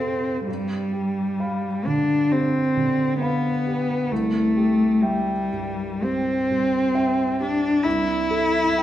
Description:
classical, romantic duo for cello and grand piano; 66 BPM; 4/4; rubato; C major; A4 = 440 Hz
warm cello; melody; 0.0-8.8 s; G3 to E4; -21 LUFS; left 1 dB
dark baby grand piano; accompaniment; 0.0-8.8 s; C2 to C6; -26 LUFS; right 3 dB
wet recital hall reverb, RT60 1.5 s; minimal, uncompressed stereo recording; -20 LUFS; side -12 dB against mid
0.0-8.8 A section
0.5 G7; 4.1 C; 7.9 Am/C

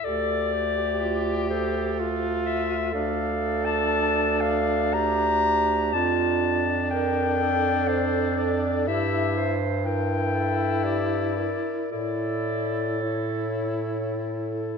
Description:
classical, lyrical piece for single-reed quartet; 61 BPM; 3/4; uneven beats, rubato; D minor; A4 = 441 Hz
mellow clarinet; melody; 0.0-14.8 s; A4 to Bb5; -27 LUFS; left 6 dB
clear clarinet; second line; 0.0-14.7 s; F4 to C5; -29 LUFS; right 9 dB
warm bass clarinet; bass; 0.0-14.8 s; D2 to A2; -28 LUFS; right 2 dB
mellow tenor saxophone; accompaniment; 0.1-14.8 s; D4 to G4; -29 LUFS; left 2 dB
wet concert hall reverb, RT60 1.9 s; -22 LUFS; side -6 dB against mid
0.0-14.8 A section
0.0 Dm; 2.9 D5; 5.9 Dm/F; 8.9 Gm6; 11.9 A

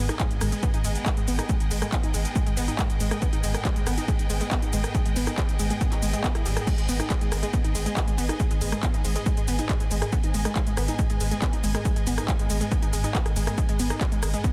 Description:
driving peak-time techno; 139 BPM; 4/4; straight; G# harmonic minor; A4 = 438 Hz
saturated sub bass; bass; 0.0-14.3 s; G#1; -31 LUFS; equal; overdrive, sidechain pumping, low-pass filter
swarming drone; drone; 0.0-14.5 s; G#2; -38 LUFS; equal
clear symphonic string section; texture; 0.0-14.5 s; B3 to G#5; -38 LUFS; equal; sidechain pumping
analog pluck; riff; 0.1-14.5 s; G3 to G#4; -34 LUFS; equal; chorus, overdrive, cassette tape, sidechain pumping, tape echo
techno drum kit; drums; 0.1-14.5 s; crash cymbal, handclaps, hi-hat, ride cymbal, rim click, shaker; -34 LUFS; equal; sidechain pumping on hats, sidechain pumping on cymbals, sidechain pumping on perc, soft clipping on snare
electronic kick drum; drums; 0.2-14.5 s; -28 LUFS; equal
digital ambience; dense, heavily limited modern master; -25 LUFS; mono
0.0-14.5 A section
0.0 G#m

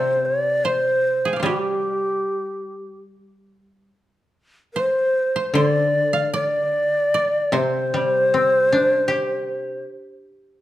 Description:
japanese traditional, Japanese chamber music; 67-80 BPM; 4/4; rubato; A4 = 440 Hz
long shakuhachi; melody; 0.0-9.8 s; G4 to D5; -19 LUFS; equal
koto; second line; 0.0-9.8 s; C4 to G5; -27 LUFS; right 4 dB
koto; accompaniment; 0.0-10.6 s; C3 to G4; -25 LUFS; left 1 dB
moderate recital hall reverb, RT60 1.3 s; dark, warm production; -18 LUFS; side -14 dB against mid
0.0-4.8 A section; 4.8-10.6 B section

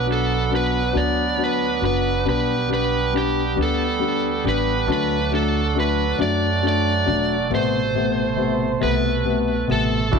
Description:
six-eight pop ballad; 46 BPM (dotted quarters); 6/8; straight; A4 = 437 Hz
lead guitar through a small cranked amp; melody; 0.0-10.2 s; G4 to D5; -23 LUFS; equal; overdrive
bright tonewheel organ; sustained chords; 0.0-10.2 s; B2 to A4; -26 LUFS; right 14 dB; wide subtle chorus
upright bass; bass; 0.0-10.2 s; E1 to F#2; -25 LUFS; right 3 dB
felt-muted upright piano; accompaniment; 0.1-10.2 s; C3 to E4; -24 LUFS; left 10 dB
soft-mallet drum kit; drums; 10.1-10.2 s; crash cymbal, kick drum; -18 LUFS; right 2 dB
light reverb, studio reverb; 1960s-style stereo with parts hard left and right; -18 LUFS; side -5 dB against mid
0.0-10.1 A section
0.0 Bm; 2.3 G/B; 4.9 D; 7.5 Amadd9

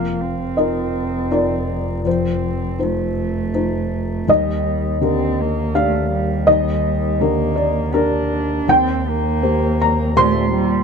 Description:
neoclassical piano and strings; 81 BPM; 3/4; rubato; A4 = 437 Hz
muted cello; second line; 0.0-10.8 s; G3 to D4; -24 LUFS; right 5 dB
felt-muted upright piano; accompaniment; 0.0-10.8 s; Eb2 to C6; -18 LUFS; left 1 dB
muted double bass; bass; 0.0-10.8 s; F1 to Eb2; -23 LUFS; left 1 dB
light reverb; close, detailed microphones; -16 LUFS; side -6 dB against mid
0.0-10.8 A section
0.0 F7sus4; 4.3 Ebmaj7; 8.7 Cm7/Eb

